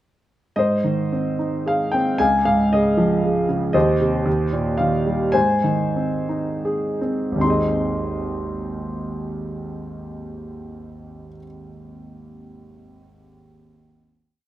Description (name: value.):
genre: classical, lyrical solo piano.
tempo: 76-119 BPM.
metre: 3/4.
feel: rubato.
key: Ab major.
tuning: A4 = 440 Hz.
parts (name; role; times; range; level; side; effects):
warm grand piano; solo; 0.6-14.4 s; Ab1 to C6; -20 LUFS; equal; none.
room: light reverb.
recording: close, detailed microphones.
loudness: -18 LUFS.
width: side -14 dB against mid.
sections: 0.6-7.4 A section; 7.4-11.9 final chord.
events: slowing down 3.7-7.4.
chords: 0.6 Ab; 2.2 Db; 3.7 Cm/Eb; 4.3 Eb; 5.3 Ab.